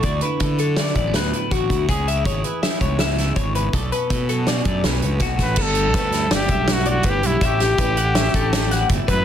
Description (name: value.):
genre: math rock and midwest emo.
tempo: 163 BPM.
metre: 5/4.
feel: straight.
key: unclear.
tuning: A4 = 440 Hz.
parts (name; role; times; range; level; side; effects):
twelve-string electric guitar; accompaniment; 0.0-9.2 s; F#2 to A4; -28 LUFS; right 8 dB; none.
twelve-string electric guitar; arpeggios; 0.0-9.2 s; F#4 to F#5; -25 LUFS; left 8 dB; lush chorus.
fuzz fingered electric bass; bass; 0.0-9.2 s; G1 to D3; -23 LUFS; equal; overdrive.
loose indie drum kit; drums; 0.0-9.2 s; crash cymbal, hi-hat, kick drum, snare drum; -22 LUFS; right 1 dB; none.
bright trumpet; melody; 5.4-9.2 s; E4 to B4; -22 LUFS; equal; none.
room: little or no reverb.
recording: dense, heavily limited modern master.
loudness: -17 LUFS.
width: side -9 dB against mid.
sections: 0.0-5.6 A section; 5.6-9.2 B section.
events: none.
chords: 0.0 D69; 1.9 C#m7; 3.7 Bm9; 5.6 G69; 7.4 A13.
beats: | 0.04 0.41 0.78 1.15 1.52 | 1.89 2.26 2.63 3.00 3.37 | 3.73 4.10 4.47 4.84 5.21 | 5.58 5.95 6.32 6.68 7.05 | 7.42 7.79 8.16 8.53 8.89.